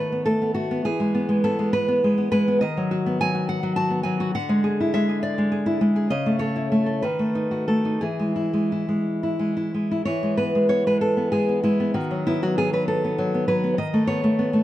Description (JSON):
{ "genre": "romantic piece for solo classical guitar", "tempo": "58-72 BPM (dotted quarters)", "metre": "6/8", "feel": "rubato", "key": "E major", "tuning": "A4 = 440 Hz", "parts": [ { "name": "nylon-string guitar", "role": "solo", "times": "0.0-14.6 s", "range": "C#3 to A5", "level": "-20 LUFS", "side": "equal", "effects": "none" } ], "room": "light reverb", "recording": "close, detailed microphones", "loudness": "-20 LUFS", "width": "side -14 dB against mid", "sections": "0.0-10.1 A section; 10.1-14.6 A section", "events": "none", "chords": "0.0 B7/D#; 0.8 E; 2.6 B/D#; 4.3 E7/D; 6.1 A/C#; 7.0 B7/D#; 8.0 E; 11.9 B/D#; 13.8 B7/D#", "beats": "| 0.84 1.74 | 2.63 3.49 | 4.34 5.25 | 6.12 7.04 | 8.03 9.05 | 10.06 11.01 | 11.94 12.86 | 13.77" }